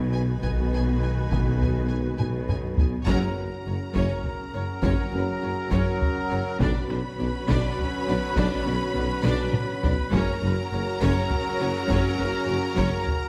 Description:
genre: cinematic, epic orchestral film score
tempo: 68 BPM (dotted quarters)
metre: 6/8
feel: straight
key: F# major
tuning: A4 = 441 Hz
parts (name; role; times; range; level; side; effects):
- mellow French horn section; sustained chords; 0.0-13.3 s; G#3 to F#4; -37 LUFS; equal; none
- mellow trombone section; sustained chords; 0.0-13.3 s; B2 to F#3; -38 LUFS; equal; none
- rich symphonic string section; sustained chords; 0.0-13.3 s; C#4 to G#5; -39 LUFS; equal; none
- warm trumpet section; stabs; 0.0-13.3 s; A#4 to B4; -37 LUFS; equal; none
- dark studio cello section; bass; 0.0-12.8 s; F#2 to B2; -32 LUFS; equal; none
- dark symphonic double bass section; bass; 0.0-12.9 s; F#1 to B1; -32 LUFS; equal; none
- mellow tuba; bass; 0.0-12.9 s; F#1 to B1; -34 LUFS; equal; none
- rich studio violin section; melody; 0.1-13.3 s; G#5 to B5; -39 LUFS; equal; none
- warm symphonic violin section; second line; 0.1-13.0 s; B4 to D5; -41 LUFS; equal; none
- warm symphonic viola section; accompaniment; 0.1-13.1 s; C#4 to D#4; -39 LUFS; equal; none
- taiko ensemble; drums; 0.4-13.3 s; none; -30 LUFS; equal; none
room: moderate recital hall reverb, RT60 1.5 s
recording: none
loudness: -25 LUFS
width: mono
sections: 0.0-3.1 A section; 3.1-13.3 B section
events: drum fill 2.2-3.1, 9.3-10.1; band accent 3.1-3.7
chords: 0.0 B6; 3.1 F#; 6.6 Bmadd9; 10.1 F#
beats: 0.44 | 1.32 2.20 | 3.08 3.96 | 4.84 5.73 | 6.61 7.49 | 8.37 9.25 | 10.13 11.01 | 11.89 12.78

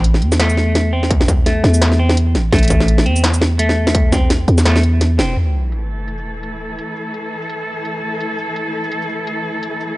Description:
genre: half-time drum and bass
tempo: 169 BPM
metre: 4/4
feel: swing 57% on 16ths, half-time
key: A minor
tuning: A4 = 436 Hz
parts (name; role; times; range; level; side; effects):
- semi-hollow electric guitar; arpeggios; 0.0-5.4 s; A3 to C4; -21 LUFS; equal; analog delay
- growling 808-style bass; bass; 0.0-5.4 s; E1 to E2; -14 LUFS; equal; tube saturation
- industrial drum kit; drums; 0.0-9.9 s; hi-hat, shaker, snare drum; -19 LUFS; equal; low-pass filter on snare, low-pass filter on hats, low-pass filter on perc
- electronic kick drum; drums; 1.1-4.2 s; none; -15 LUFS; equal; distortion
- dark studio cello section; sustained chords; 5.4-10.0 s; E3 to A4; -22 LUFS; equal; sidechain pumping
- sub drop; sound effects; 5.4-6.8 s; none; -21 LUFS; equal; none
room: little or no reverb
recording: dry, gritty hardware recording, nothing above 10.9 kHz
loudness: -14 LUFS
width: side -19 dB against mid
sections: 0.0-5.4 A section; 5.4-10.0 B section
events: band accent 5.2; impact 5.4-6.8; filter sweep on drum 5.4-10.0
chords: 0.0 A5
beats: 0.04 0.40 0.75 | 1.11 1.46 1.82 2.17 | 2.53 2.88 3.24 3.59 | 3.95 4.30 4.66 5.01 | 5.37 5.72 6.08 6.43 | 6.79 7.14 7.50 7.85 | 8.21 8.56 8.92 9.27 | 9.63

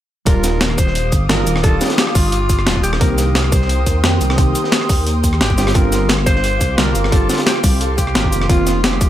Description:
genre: liquid drum and bass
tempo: 175 BPM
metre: 4/4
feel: straight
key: Eb major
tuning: A4 = 440 Hz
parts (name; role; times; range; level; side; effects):
- growling alto saxophone; melody; 0.3-9.1 s; F4 to C5; -23 LUFS; equal; analog delay
- deep mellow chord stab; accompaniment; 0.3-9.1 s; D3 to G4; -22 LUFS; equal; chorus, diffuse ambient delay
- ethereal airy pad; sustained chords; 0.7-9.1 s; Bb3 to Eb6; -25 LUFS; right 1 dB; ensemble chorus, built-in reverb
- dark detuned saw bass; bass; 0.3-9.1 s; Eb1 to F2; -18 LUFS; equal; tube saturation
- breakbeat sampler-style drum kit; drums; 0.3-9.1 s; hi-hat, rim click, shaker, snare drum; -19 LUFS; equal; overdrive
- crunchy breakbeat drum kit; drums; 0.3-9.1 s; hi-hat, snare drum; -25 LUFS; equal; high-pass filter on hats, high-pass filter on snare, high-pass filter on room
- electronic kick drum; drums; 0.3-9.1 s; none; -16 LUFS; equal; none
room: light reverb, small room ambience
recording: none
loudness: -13 LUFS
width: side -12 dB against mid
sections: 0.3-9.1 A section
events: drop 0.3-9.1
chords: 0.3 Ebmaj9; 3.0 Cm7; 5.6 G7sus4; 8.3 F7sus4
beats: | 0.27 0.61 0.95 1.29 | 1.64 1.98 2.32 2.67 | 3.01 3.35 3.69 4.04 | 4.38 4.72 5.07 5.41 | 5.75 6.09 6.44 6.78 | 7.12 7.47 7.81 8.15 | 8.49 8.84

